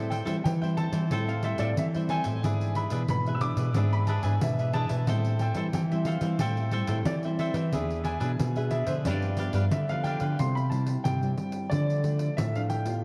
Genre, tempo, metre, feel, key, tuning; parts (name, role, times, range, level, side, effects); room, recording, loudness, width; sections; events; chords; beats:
samba and choro; 90 BPM; 4/4; straight; A minor; A4 = 440 Hz
warm grand piano; melody; 0.0-13.0 s; C5 to E6; -36 LUFS; equal; lush chorus, digital delay
cavaquinho; accompaniment; 0.0-10.4 s; D4 to G5; -39 LUFS; equal
nylon-string guitar; accompaniment; 0.0-13.0 s; G2 to G#4; -36 LUFS; equal
nylon-string guitar; bass; 0.0-13.0 s; E2 to E3; -30 LUFS; equal
pandeiro; percussion; 0.1-13.0 s; -36 LUFS; equal
moderate plate reverb, RT60 3.1 s; dreamy mix soaked in reverb, cassette tape; -28 LUFS; mono
0.0-10.4 A section; 10.4-13.0 B section
0.0 Am7; 2.4 E7/G#; 5.1 Am7; 7.7 E7; 9.1 G7; 10.4 C; 11.7 Dm
0.45 1.11 1.77 | 2.44 3.10 3.76 4.42 | 5.09 5.75 6.41 7.08 | 7.74 8.40 9.06 9.73 | 10.39 11.05 11.72 12.38